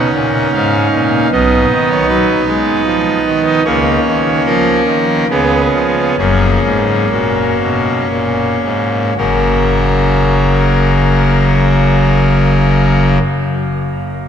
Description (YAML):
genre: classical, chorale-style piece for pipe organ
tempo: 55-77 BPM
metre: 3/4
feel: straight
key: F# major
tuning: A4 = 445 Hz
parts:
  - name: pipe organ, trumpet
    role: solo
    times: 0.0-13.2 s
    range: F#1 to F#5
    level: -11 LUFS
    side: equal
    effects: none
room: wet cathedral reverb, RT60 7.2 s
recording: dark, warm production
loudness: -11 LUFS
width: side -8 dB against mid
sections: 0.0-9.2 A section; 9.2-12.4 B section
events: slowing down 2.5-9.2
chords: 0.0 D#m7; 1.3 G#m/B; 3.7 C#69; 5.3 C#7; 6.2 F#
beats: 0.54 | 1.32 2.10 2.88 | 3.66 4.46 5.30 | 6.18 7.12 8.11 | 9.18 10.27 11.35